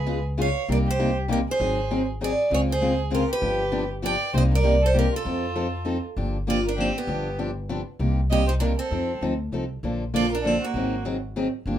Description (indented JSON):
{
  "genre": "acoustic string swing (jazz manouche)",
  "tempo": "197 BPM",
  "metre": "3/4",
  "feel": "swing 59% on 8ths",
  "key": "G minor from 6.2 s",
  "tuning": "A4 = 441 Hz",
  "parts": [
    { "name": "picked steel-string acoustic guitar", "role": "melody", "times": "0.0-11.0 s", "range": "Bb3 to G5", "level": "-27 LUFS", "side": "right 1 dB", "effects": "none" },
    { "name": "warm violin", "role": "second line", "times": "0.0-11.0 s", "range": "F4 to Eb5", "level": "-30 LUFS", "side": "right 5 dB", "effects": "none" },
    { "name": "upright bass", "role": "bass", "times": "0.0-11.8 s", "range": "G1 to F2", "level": "-26 LUFS", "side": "equal", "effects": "none" },
    { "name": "picked steel-string acoustic guitar", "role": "accompaniment", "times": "0.1-11.8 s", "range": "C3 to A4", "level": "-27 LUFS", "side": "left 2 dB", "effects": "none" }
  ],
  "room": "moderate club reverb, RT60 0.5 s",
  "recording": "minimal, uncompressed stereo recording",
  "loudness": "-22 LUFS",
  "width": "side -11 dB against mid",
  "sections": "0.0-6.2 A section; 6.2-11.8 B section",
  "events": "none",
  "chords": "0.0 Db7; 0.7 Cm7; 1.6 Ab7; 2.5 Dbmaj7; 3.4 G7; 4.3 Cm7; 5.3 F7; 6.2 Gm7; 7.1 G7; 8.0 Cm7; 8.9 F7; 9.8 Bbmaj7; 10.7 Ab7"
}